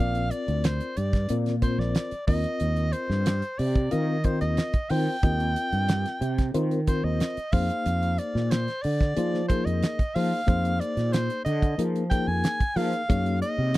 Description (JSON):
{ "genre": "electric jazz fusion", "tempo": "92 BPM", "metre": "4/4", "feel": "straight", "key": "F dorian", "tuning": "A4 = 439 Hz", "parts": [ { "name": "breathy soprano saxophone", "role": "melody", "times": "0.0-13.8 s", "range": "C5 to Ab5", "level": "-30 LUFS", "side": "equal", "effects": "none" }, { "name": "reed electric piano", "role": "accompaniment", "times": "0.0-13.8 s", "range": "Bb3 to F5", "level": "-31 LUFS", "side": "left 4 dB", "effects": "harmonic tremolo" }, { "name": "sustaining fretless electric bass", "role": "bass", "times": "0.0-13.8 s", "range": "Bb1 to F3", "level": "-26 LUFS", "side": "equal", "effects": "lush chorus" }, { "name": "damped 70s drum kit", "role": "drums", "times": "0.1-13.8 s", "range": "hi-hat, kick drum, snare drum", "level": "-25 LUFS", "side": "right 1 dB", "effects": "none" } ], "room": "little or no reverb", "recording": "dry, close 1970s-style studio recording", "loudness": "-23 LUFS", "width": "side -17 dB against mid", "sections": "0.0-13.8 A section", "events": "none", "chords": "0.0 Bb; 2.3 Eb6; 7.5 Fm7; 13.1 Gbadd9", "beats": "0.65 1.30 1.96 | 2.61 3.27 3.93 4.58 | 5.24 5.89 6.55 7.21 | 7.86 8.52 9.18 9.83 | 10.48 11.14 11.79 12.45 | 13.10 13.75" }